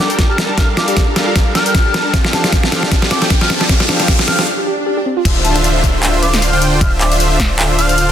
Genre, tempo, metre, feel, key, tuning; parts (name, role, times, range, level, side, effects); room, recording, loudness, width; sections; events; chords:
future bass; 154 BPM; 4/4; swing 56% on 16ths, half-time; D minor; A4 = 440 Hz
wooden flute; melody; 0.0-8.1 s; A5 to F6; -21 LUFS; equal; sidechain pumping, tape echo
soft round pluck; arpeggios; 0.0-5.2 s; C4 to Bb4; -23 LUFS; right 1 dB; chorus, sidechain pumping, tape echo
supersaw chords; riff; 0.0-8.1 s; D3 to A5; -17 LUFS; equal; sidechain pumping
riser, swell and downlifter; sound effects; 1.4-8.1 s; -23 LUFS; equal
dubstep drum kit; drums; 0.1-8.1 s; crash cymbal, handclaps, hi-hat, snare drum; -17 LUFS; left 1 dB; overdrive, small room ambience
electronic kick drum; drums; 0.2-7.5 s; -15 LUFS; equal; small room ambience
warm 808-style bass; bass; 5.3-8.1 s; D1; -17 LUFS; equal; sidechain pumping
light reverb; dense, heavily limited modern master; -11 LUFS; side -10 dB against mid
0.0-5.3 A section; 5.3-8.1 B section
build-up 0.0-5.3; drum fill 0.0-4.5; filter sweep on flute 0.0-5.3; break 4.5-5.3; swell 4.5-5.3; drop 5.3-8.1
0.0 Gm9; 2.1 F69; 5.3 Dm9